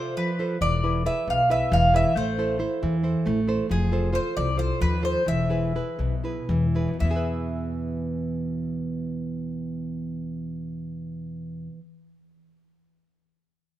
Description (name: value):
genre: greek folk, Greek bouzouki band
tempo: 223-274 BPM (eighths)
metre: 7/8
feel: straight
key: unclear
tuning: A4 = 440 Hz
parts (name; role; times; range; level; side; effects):
- Greek bouzouki; melody; 0.0-11.8 s; G#4 to F5; -26 LUFS; equal; none
- nylon-string guitar; accompaniment; 0.0-12.0 s; E2 to C5; -27 LUFS; right 2 dB; none
- upright bass; bass; 0.6-11.8 s; E1 to E2; -26 LUFS; left 2 dB; none
room: light reverb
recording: minimal, uncompressed stereo recording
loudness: -23 LUFS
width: side -13 dB against mid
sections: 0.0-7.0 A section; 7.0-10.7 B section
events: slowing down 3.7-7.0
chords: 0.0 F; 0.6 E; 2.2 Am; 3.7 F; 5.3 E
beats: 0.16 0.38 | 0.61 0.83 1.05 1.27 1.50 1.72 1.94 | 2.16 2.38 2.60 2.82 3.04 3.26 3.48 | 3.70 3.92 4.14 4.36 4.58 4.81 5.04 | 5.27 5.50 5.74 5.99 6.24 6.49 6.75 | 7.01 7.28 7.54 7.81 8.08 8.35 8.62 | 8.89 9.15 9.42 9.69 9.95 10.22 10.48